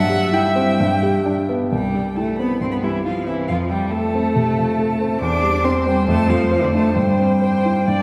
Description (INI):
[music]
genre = quick classical-period movement for piano quartet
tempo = 137 BPM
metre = 4/4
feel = uneven beats, rubato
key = C major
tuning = A4 = 440 Hz
[part]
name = rich violin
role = melody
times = 0.0-8.0 s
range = D5 to D6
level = -28 LUFS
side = equal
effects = none
[part]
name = clear cello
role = second line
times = 0.0-8.0 s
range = D3 to D4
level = -23 LUFS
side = equal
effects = none
[part]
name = rich violin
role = second line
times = 0.0-8.0 s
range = G3 to E5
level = -27 LUFS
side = equal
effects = none
[part]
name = warm grand piano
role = accompaniment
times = 0.0-8.0 s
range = C2 to C5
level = -23 LUFS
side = equal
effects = none
[sound]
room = wet concert hall reverb, RT60 2.1 s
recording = heard from further back in the room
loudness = -19 LUFS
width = mono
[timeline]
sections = 0.0-1.7 A section; 1.7-8.0 B section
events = none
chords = 0.0 C/G; 0.8 G; 1.7 C; 3.5 F; 5.2 C/E; 6.1 Dm7/F; 7.0 C/G